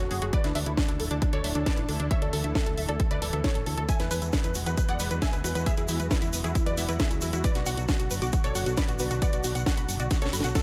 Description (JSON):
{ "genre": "uplifting trance", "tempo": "135 BPM", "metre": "4/4", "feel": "straight", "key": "unclear", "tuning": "A4 = 441 Hz", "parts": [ { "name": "unison pluck", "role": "melody", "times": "0.0-10.6 s", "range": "D4 to G#5", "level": "-36 LUFS", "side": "equal", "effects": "sidechain pumping, dub echo" }, { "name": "clear baby grand piano", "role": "second line", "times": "0.0-10.6 s", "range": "D4 to G#5", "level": "-41 LUFS", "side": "equal", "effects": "none" }, { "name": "analog string pad", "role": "sustained chords", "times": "0.0-10.6 s", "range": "B2 to A4", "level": "-41 LUFS", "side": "equal", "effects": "ensemble chorus, sidechain pumping" }, { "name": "solid FM bass", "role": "bass", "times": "0.0-10.5 s", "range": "D1 to E2", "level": "-34 LUFS", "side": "equal", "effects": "sidechain pumping" }, { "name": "house drum kit", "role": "drums", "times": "0.0-10.6 s", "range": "hi-hat, snare drum", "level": "-36 LUFS", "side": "equal", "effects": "overdrive" }, { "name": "tight sequenced synth", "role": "arpeggios", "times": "0.1-10.6 s", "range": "E4 to D6", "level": "-41 LUFS", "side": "equal", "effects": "chorus, phaser, sidechain pumping, delay" }, { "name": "electronic kick drum", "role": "drums", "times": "0.3-10.6 s", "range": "none", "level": "-29 LUFS", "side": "equal", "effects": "overdrive" }, { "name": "egg shaker", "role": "percussion", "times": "3.9-10.6 s", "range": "none", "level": "-41 LUFS", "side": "equal", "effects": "none" } ], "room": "digital ambience", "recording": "none", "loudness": "-27 LUFS", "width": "mono", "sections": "0.0-10.6 A section", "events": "drum fill 10.1-10.6", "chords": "0.3 Dsus2; 3.9 Eadd9; 7.4 Bm" }